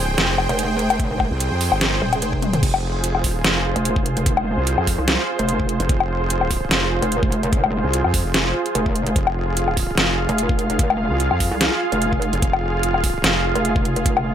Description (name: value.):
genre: heavy wobble dubstep.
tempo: 147 BPM.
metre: 4/4.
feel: swing 54% on 16ths, half-time.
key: F minor.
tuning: A4 = 442 Hz.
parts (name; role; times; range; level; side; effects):
supersaw pad; sustained chords; 0.0-14.3 s; F4 to G5; -24 LUFS; right 2 dB; sidechain pumping, low-pass filter.
wobble bass; bass; 0.0-13.5 s; F1 to F2; -22 LUFS; equal; chorus, overdrive.
dubstep drum kit; drums; 0.2-14.2 s; crash cymbal, hi-hat, snare drum, toms, woodblock; -21 LUFS; left 2 dB; none.
pulsing pluck wobble bass; bass; 0.5-14.3 s; Eb1 to C2; -22 LUFS; equal; chorus, overdrive.
electronic kick drum; drums; 1.0-14.1 s; none; -21 LUFS; equal; none.
room: digital ambience.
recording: none.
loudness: -17 LUFS.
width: side -9 dB against mid.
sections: 0.0-2.6 A section; 2.6-14.3 A section.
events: drop 0.0-2.6, 2.6-14.3; drum fill 2.4.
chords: 0.0 Fm.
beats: 0.18 0.59 | 1.00 1.40 1.81 2.22 | 2.63 3.04 3.44 3.85 | 4.26 4.67 5.08 5.49 | 5.89 6.30 6.71 7.12 | 7.53 7.93 8.34 8.75 | 9.16 9.57 9.97 10.38 | 10.79 11.20 11.61 12.02 | 12.42 12.83 13.24 13.65 | 14.06.